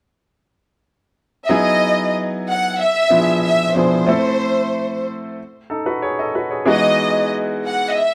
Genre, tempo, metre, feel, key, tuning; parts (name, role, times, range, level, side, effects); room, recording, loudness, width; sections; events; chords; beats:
soul; 93 BPM; 4/4; straight; E major; A4 = 440 Hz
warm symphonic violin section; melody; 1.4-8.1 s; C5 to F#5; -20 LUFS; equal
clear baby grand piano; accompaniment; 1.5-8.0 s; B2 to D#5; -21 LUFS; equal
light reverb; -18 LUFS; mono
0.0-1.5 A section; 1.5-8.1 B section
0.0 N.C.; 1.5 Emaj9; 2.8 E7b9; 4.1 Am; 5.4 N.C.; 6.7 Emaj9
0.20 0.85 | 1.50 2.14 2.79 3.44 | 4.08 4.73 5.37 6.02 | 6.67 7.31 7.96